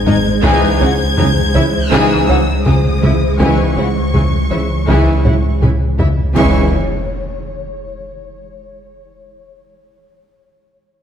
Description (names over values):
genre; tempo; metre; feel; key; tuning
cinematic, hybrid orchestral and electronic film score; 81 BPM; 4/4; straight; C# minor; A4 = 435 Hz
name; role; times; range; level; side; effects
rich studio violin section; melody; 0.0-6.8 s; C#6 to G#6; -24 LUFS; left 3 dB; none
swarming drone; sustained chords; 0.0-6.8 s; E3 to C#5; -22 LUFS; left 1 dB; built-in reverb
sub bass with octave; bass; 0.0-6.8 s; G#1 to C#2; -18 LUFS; equal; none
warm symphonic violin section; second line; 0.1-6.8 s; D#4 to G#5; -22 LUFS; left 4 dB; none
clear symphonic viola section; accompaniment; 0.1-6.8 s; E3 to E4; -21 LUFS; right 2 dB; none
soft round pluck; arpeggios; 0.1-6.2 s; C#3 to D#4; -26 LUFS; right 2 dB; none
rubbery square bass; riff; 0.1-6.2 s; C#2 to G#3; -20 LUFS; left 2 dB; none
rich symphonic cello section; bass; 0.1-6.8 s; G#2 to C#3; -22 LUFS; right 4 dB; none
rich symphonic double bass section; bass; 0.1-6.8 s; G#1 to C#2; -22 LUFS; right 3 dB; none
taiko ensemble; drums; 0.1-6.5 s; none; -20 LUFS; equal; none
mellow French horn section; sustained chords; 0.4-6.7 s; G#3 to E4; -23 LUFS; left 4 dB; none
mellow trombone section; sustained chords; 0.4-6.7 s; G#2 to E3; -25 LUFS; right 3 dB; none
impact; sound effects; 6.4-9.3 s; none; -24 LUFS; equal; none
room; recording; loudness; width
wet scoring stage reverb, RT60 1.4 s; none; -11 LUFS; side -8 dB against mid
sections
0.0-6.4 A section; 6.4-9.3 B section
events
drum fill 5.2-6.4; impact 6.4-9.3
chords
0.4 C#madd9; 3.4 C#m